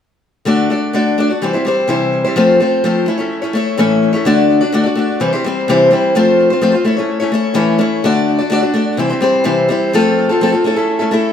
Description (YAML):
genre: rock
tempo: 127 BPM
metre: 4/4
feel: straight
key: unclear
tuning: A4 = 441 Hz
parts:
  - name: picked old ladder-braced acoustic guitar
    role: solo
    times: 0.5-11.3 s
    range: A2 to D5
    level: -12 LUFS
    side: left 2 dB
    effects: digital delay
room: moderate large studio reverb, RT60 1.1 s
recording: band playing live in one room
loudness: -12 LUFS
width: side -8 dB against mid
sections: 0.5-4.3 A section; 4.3-11.3 B section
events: none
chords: 0.5 D; 1.4 C; 2.4 F; 3.1 A; 4.3 D; 5.2 C; 6.2 F; 6.9 A; 8.0 D; 9.0 C; 9.9 F; 10.6 A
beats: | 0.47 0.94 1.42 1.89 | 2.37 2.84 3.32 3.79 | 4.26 4.74 5.21 5.68 | 6.16 6.63 7.10 7.58 | 8.05 8.52 8.99 9.47 | 9.94 10.41 10.88